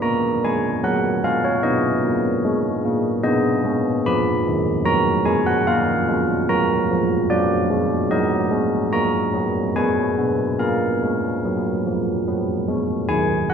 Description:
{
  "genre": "classical, tune for church bells",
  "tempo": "74 BPM",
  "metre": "3/4",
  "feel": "straight",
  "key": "unclear",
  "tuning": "A4 = 442 Hz",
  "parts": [
    { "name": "carillon bells", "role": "solo", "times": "0.0-13.5 s", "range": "Eb3 to Cb6", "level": "-18 LUFS", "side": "equal", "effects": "none" }
  ],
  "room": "moderate scoring stage reverb, RT60 2.0 s",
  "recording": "minimal, uncompressed stereo recording",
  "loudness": "-18 LUFS",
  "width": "side -7 dB against mid",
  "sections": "0.0-13.1 A section",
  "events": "none",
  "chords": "0.0 Bb7(no3); 0.8 Ebm/Gb; 3.2 Abm; 5.7 Bb; 8.1 Ebm/Gb; 9.7 Abm; 10.6 Bb5"
}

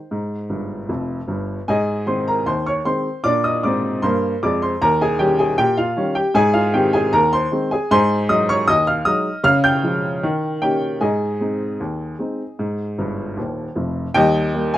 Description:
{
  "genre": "ragtime piano",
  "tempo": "77 BPM",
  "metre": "2/4",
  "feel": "straight",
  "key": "Ab major",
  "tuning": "A4 = 440 Hz",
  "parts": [
    { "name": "clear upright piano", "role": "solo", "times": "0.0-14.8 s", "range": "Eb1 to G6", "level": "-17 LUFS", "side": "equal", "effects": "none" }
  ],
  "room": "light reverb",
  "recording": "minimal, uncompressed stereo recording",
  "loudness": "-17 LUFS",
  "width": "side -14 dB against mid",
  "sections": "0.0-1.7 A section; 1.7-14.1 A section",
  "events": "upright piano fill 0.5-1.7, 13.0-14.1",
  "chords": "0.0 Ab; 3.2 Bb7; 4.8 Eb7; 6.3 Ab; 7.9 Ab7; 9.4 Db; 10.2 Eb7; 11.0 Ab; 14.1 Eb"
}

